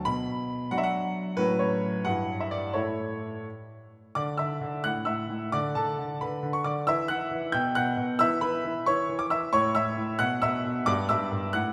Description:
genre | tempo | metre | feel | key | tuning
classical-period piano sonatina | 89 BPM (dotted quarters) | 6/8 | rubato | D major | A4 = 440 Hz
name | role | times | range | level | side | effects
clear grand piano | solo | 0.0-11.7 s | G2 to G6 | -28 LUFS | equal | none
room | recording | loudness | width
wet concert hall reverb, RT60 2.4 s | recorded in a church or concert hall | -28 LUFS | mono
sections
0.0-4.2 A section; 4.2-11.7 B section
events
none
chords
0.0 Bm; 1.4 F#m/A; 2.1 Em/G; 2.8 A; 4.2 Dsus2; 4.9 A5; 5.5 D5; 6.9 Esus2; 7.5 B5; 8.2 E5; 9.5 A; 10.2 B5; 10.9 G5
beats
| 0.05 0.71 | 1.38 2.06 | 2.75 3.46 | 4.17 4.85 | 5.53 6.20 | 6.87 7.54 | 8.20 8.87 | 9.53 10.20 | 10.88 11.55

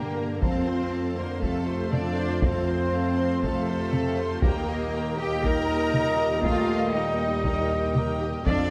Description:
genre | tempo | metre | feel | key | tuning
cinematic, epic orchestral film score | 120 BPM | 4/4 | straight | unclear | A4 = 444 Hz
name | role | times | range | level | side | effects
rich symphonic violin section | melody | 0.0-8.7 s | A4 to Bb5 | -39 LUFS | equal | none
clear symphonic violin section | second line | 0.0-8.7 s | G4 to C6 | -39 LUFS | equal | none
rich symphonic viola section | accompaniment | 0.0-8.7 s | C4 to C5 | -36 LUFS | equal | none
clear trombone section | sustained chords | 0.0-8.7 s | Bb2 to D4 | -39 LUFS | equal | none
mellow French horn section | sustained chords | 0.0-8.7 s | C3 to Eb4 | -34 LUFS | equal | none
dark trumpet section | stabs | 0.0-8.7 s | Bb4 to F5 | -35 LUFS | equal | none
clear symphonic cello section | bass | 0.0-8.7 s | A3 to Bb4 | -33 LUFS | equal | none
rich symphonic double bass section | bass | 0.0-8.7 s | Eb2 to G2 | -34 LUFS | equal | none
taiko ensemble | drums | 0.4-8.7 s | none | -30 LUFS | equal | none
room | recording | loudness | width
wet scoring stage reverb, RT60 1.5 s | none | -26 LUFS | mono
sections
0.0-8.7 A section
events
none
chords
0.4 F; 4.4 Eb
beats
| 0.42 0.92 1.42 1.93 | 2.43 2.93 3.43 3.93 | 4.43 4.94 5.44 5.94 | 6.44 6.95 7.45 7.95 | 8.45

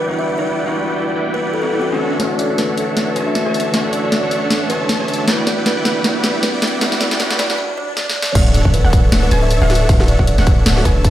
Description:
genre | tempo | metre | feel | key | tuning
future bass | 156 BPM | 4/4 | swing 56% on 16ths, half-time | D major | A4 = 436 Hz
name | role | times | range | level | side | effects
buzzing kalimba | melody | 0.0-11.1 s | F#4 to E5 | -22 LUFS | equal | sidechain pumping, low-pass filter, digital delay
overdriven tine electric piano | accompaniment | 0.0-8.2 s | E3 to F#4 | -24 LUFS | left 2 dB | sidechain pumping, digital delay
warm chamber string section | sustained chords | 0.0-7.6 s | D3 to C#5 | -30 LUFS | left 1 dB | none
dense compressed supersaw | riff | 0.0-11.1 s | D4 to A5 | -21 LUFS | right 1 dB | sidechain pumping, low-pass filter
riser, swell and impact | sound effects | 0.8-9.9 s | none | -28 LUFS | right 1 dB | none
warm 808-style bass | bass | 2.2-11.1 s | D1 to D2 | -16 LUFS | equal | sidechain pumping, high-pass filter
trap drum kit | drums | 2.2-11.1 s | crash cymbal, hi-hat, snare drum | -19 LUFS | equal | small room reverb
wide unison pluck | arpeggios | 8.4-11.1 s | F#5 to A5 | -27 LUFS | right 1 dB | sidechain pumping
electronic kick drum | drums | 8.4-11.1 s | none | -14 LUFS | equal | small room reverb
room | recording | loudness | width
moderate digital room reverb, RT60 1.1 s, digital ambience | played on a big sound system in a bare room, stone room reverb, high-pass filter | -14 LUFS | side -13 dB against mid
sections
0.0-2.2 A section; 2.2-8.4 B section; 8.4-11.1 C section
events
riser 0.8-2.2; build-up 2.2-8.4; drum fill 2.2-7.6, 8.0-8.4; filter sweep on supersaw synth 2.2-8.4; filter sweep on kalimba 2.2-8.4; filter sweep 2.2-8.4; break 7.6-8.4; swell 7.6-8.4; drop 8.4-11.1; impact 8.4-9.9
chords
0.0 Em7; 2.0 Dmaj7; 5.3 Em7; 8.2 N.C.; 8.4 Dmaj7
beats
0.28 | 0.66 1.05 1.43 1.81 | 2.20 2.58 2.97 3.35 | 3.74 4.12 4.51 4.89 | 5.28 5.66 6.05 6.43 | 6.82 7.20 7.58 7.97 | 8.35 8.74 9.12 9.51 | 9.89 10.28 10.66 11.05

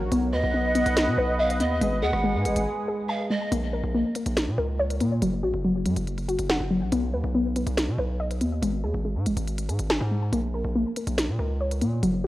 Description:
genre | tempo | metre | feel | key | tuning
hip hop, drill | 141 BPM | 4/4 | half-time | Bb phrygian | A4 = 440 Hz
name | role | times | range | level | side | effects
dark analog pad | sustained chords | 0.0-3.5 s | Ab3 to F#5 | -29 LUFS | right 1 dB | chorus
warbly dusty pluck | arpeggios | 0.0-12.3 s | Gb3 to Ab5 | -27 LUFS | left 1 dB | chorus, low-pass filter, ping-pong delay
distorted 808-style bass | bass | 0.0-12.3 s | Gb1 to B2 | -27 LUFS | equal | distortion
drill drum kit | drums | 0.1-12.1 s | hi-hat, rim click, snare drum | -28 LUFS | equal | none
breathy polished pan flute | second line | 0.3-3.5 s | D#5 to Gb5 | -29 LUFS | right 2 dB | ping-pong delay
room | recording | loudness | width
light reverb | worn, warbling old tape, cassette tape, warbly pitch drift | -23 LUFS | side -16 dB against mid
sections
0.0-3.5 A section; 3.5-12.3 B section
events
break 2.7-3.5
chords
0.1 B; 1.8 Abm; 3.5 Bbm; 5.2 N.C.; 6.9 B; 8.6 Ab5; 10.3 Bbm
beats
| 0.11 0.54 0.96 1.39 | 1.82 2.24 2.67 3.09 | 3.52 3.94 4.37 4.79 | 5.22 5.65 6.07 6.50 | 6.92 7.35 7.77 8.20 | 8.62 9.05 9.48 9.90 | 10.33 10.75 11.18 11.60 | 12.03

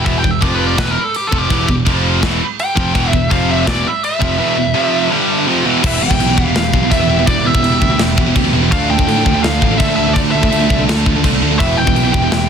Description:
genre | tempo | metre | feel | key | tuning
heavy metal | 166 BPM | 4/4 | straight | E phrygian | A4 = 440 Hz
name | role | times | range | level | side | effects
nasal lead guitar with a parked wah | melody | 0.0-12.5 s | G4 to G5 | -19 LUFS | equal | overdrive
heavy high-gain guitar | riff | 0.0-12.5 s | E2 to D4 | -20 LUFS | left 16 dB | distortion
heavy high-gain guitar | riff | 0.0-12.5 s | E2 to D4 | -18 LUFS | right 11 dB | distortion
picked electric bass | bass | 0.0-12.5 s | E1 to D3 | -19 LUFS | equal | none
biting overdriven guitar | riff | 0.1-12.5 s | E2 to A4 | -20 LUFS | left 1 dB | none
tight metal drum kit | drums | 0.1-12.4 s | crash cymbal, kick drum, snare drum | -18 LUFS | equal | none
room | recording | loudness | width
light reverb | dense, heavily limited modern master | -12 LUFS | side -7 dB against mid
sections
0.0-5.8 A section; 5.8-12.5 B section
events
lead electric guitar solo 0.0-5.8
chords
0.4 F5; 0.8 Em; 1.9 F5; 2.2 Em; 3.3 F5; 3.7 E5; 4.8 F5; 5.1 G5; 5.5 E5; 5.8 Em; 8.7 Dm; 11.6 Em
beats
| 0.06 0.42 0.78 1.14 | 1.50 1.86 2.23 2.59 | 2.95 3.31 3.67 4.03 | 4.39 4.75 5.11 5.47 | 5.83 6.19 6.55 6.91 | 7.28 7.63 8.00 8.36 | 8.71 9.08 9.44 9.80 | 10.16 10.52 10.88 11.24 | 11.60 11.96 12.32

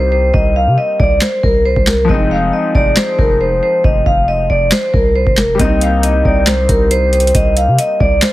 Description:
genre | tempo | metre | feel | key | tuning
hip hop, trap | 137 BPM | 4/4 | half-time | C minor | A4 = 439 Hz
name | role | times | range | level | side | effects
vibraphone with hard mallets | melody | 0.0-8.3 s | Bb4 to F5 | -14 LUFS | equal | low-pass filter, tape echo
felt-muted upright piano | accompaniment | 0.0-8.3 s | F3 to Eb4 | -21 LUFS | left 4 dB | low-pass filter
long sustained 808-style bass | bass | 0.0-8.2 s | F1 to C3 | -16 LUFS | equal | none
booming analog drum machine | drums | 0.3-8.3 s | handclaps, hi-hat, kick drum, snare drum | -15 LUFS | equal | overdrive
room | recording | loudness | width
little or no reverb | heavily compressed radio sound | -10 LUFS | side -16 dB against mid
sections
0.0-8.3 A section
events
break 0.0-5.6; hi-hats muted 3.8-5.6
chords
0.0 Cm7; 2.1 Fm7; 5.6 Cm7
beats
| 0.34 0.78 1.22 1.65 | 2.09 2.53 2.97 3.41 | 3.84 4.28 4.72 5.16 | 5.59 6.03 6.47 6.91 | 7.35 7.79 8.22

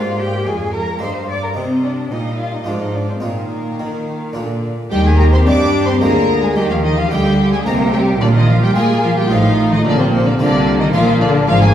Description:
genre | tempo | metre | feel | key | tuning
classical, baroque-style concerto movement with solo episodes | 109 BPM | 3/4 | straight | unclear | A4 = 437 Hz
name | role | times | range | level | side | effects
rich chamber violin section | melody | 0.0-11.7 s | C5 to D6 | -25 LUFS | left 3 dB | none
warm cello | melody | 0.0-11.7 s | C3 to D5 | -19 LUFS | left 1 dB | none
rich chamber violin section | second line | 0.0-11.7 s | C4 to D6 | -22 LUFS | left 2 dB | none
harpsichord | accompaniment | 0.0-11.7 s | F2 to F4 | -25 LUFS | right 1 dB | none
rich symphonic viola section | accompaniment | 0.0-11.7 s | D3 to Ab4 | -24 LUFS | right 2 dB | none
warm chamber cello section | bass | 0.0-11.7 s | F2 to Bb3 | -20 LUFS | right 1 dB | none
rich chamber double bass section | bass | 4.9-11.7 s | Ab1 to Bb2 | -18 LUFS | right 1 dB | none
room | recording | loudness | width
wet recital hall reverb, RT60 1.4 s | heard from further back in the room | -13 LUFS | side -10 dB against mid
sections
0.0-4.9 A section; 4.9-11.7 B section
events
none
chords
0.0 Bb7/Ab; 1.0 Eb/G; 1.6 Cm; 2.7 Fm7/Ab; 3.2 Bbsus4; 4.4 Bb; 4.9 Eb; 6.0 Bb7/D; 6.6 Eb; 8.2 Bb5; 9.3 F7/A; 9.8 Bb5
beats
0.47 1.02 | 1.57 2.12 2.67 | 3.23 3.80 4.36 | 4.92 5.47 6.02 | 6.57 7.11 7.66 | 8.21 8.76 9.30 | 9.85 10.39 10.94 | 11.48

